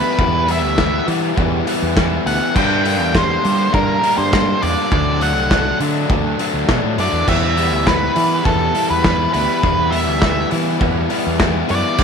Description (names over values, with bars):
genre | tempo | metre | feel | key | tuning
indie rock | 102 BPM | 4/4 | straight | unclear | A4 = 440 Hz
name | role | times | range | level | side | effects
octave-fuzz lead guitar | melody | 0.0-12.0 s | A4 to G5 | -19 LUFS | right 1 dB | distortion, slapback echo
fuzz guitar | riff | 0.0-12.0 s | G2 to E4 | -23 LUFS | right 14 dB | distortion, analog chorus, slapback echo
overdriven electric guitar | riff | 0.0-12.0 s | G2 to E4 | -21 LUFS | left 13 dB | none
growling fingered electric bass | bass | 0.2-12.0 s | C2 to G3 | -21 LUFS | right 1 dB | overdrive
loose indie drum kit | drums | 0.2-12.0 s | crash cymbal, hi-hat, kick drum, snare drum | -20 LUFS | equal | none
room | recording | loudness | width
light reverb, small room ambience | 1960s-style stereo with parts hard left and right | -14 LUFS | side -6 dB against mid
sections
0.0-12.0 A section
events
none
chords
0.0 Em; 2.6 Gm; 4.9 D; 7.3 Em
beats
| 0.18 0.78 1.37 1.96 | 2.56 3.15 3.74 4.33 | 4.92 5.51 6.10 6.70 | 7.28 7.87 8.46 9.05 | 9.64 10.23 10.82 11.40 | 11.99